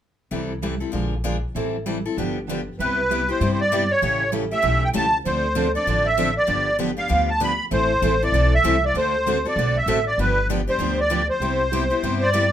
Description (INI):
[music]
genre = acoustic string swing (jazz manouche)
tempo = 195 BPM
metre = 4/4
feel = swing 60% on 8ths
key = C major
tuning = A4 = 440 Hz
[part]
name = picked steel-string acoustic guitar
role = accompaniment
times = 0.3-12.4 s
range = C3 to Bb4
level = -27 LUFS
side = left 5 dB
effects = none
[part]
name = picked steel-string acoustic guitar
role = accompaniment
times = 0.3-12.4 s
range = C3 to A4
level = -29 LUFS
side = right 6 dB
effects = none
[part]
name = upright bass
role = bass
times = 0.3-12.5 s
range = G1 to G2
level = -25 LUFS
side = equal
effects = none
[part]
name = musette accordion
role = melody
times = 2.8-12.5 s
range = B4 to B5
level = -20 LUFS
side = equal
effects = none
[sound]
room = moderate club reverb, RT60 0.5 s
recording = minimal, uncompressed stereo recording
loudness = -19 LUFS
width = side -10 dB against mid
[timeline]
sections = 0.3-2.8 A section; 2.8-12.5 B section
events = none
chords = 0.3 C6; 0.9 Bb7; 1.6 Am7; 2.2 G7; 2.8 Cmaj7; 4.0 A7; 5.3 Dm7; 6.5 G7; 7.7 Am; 8.9 D7; 10.2 G7; 11.4 Cmaj7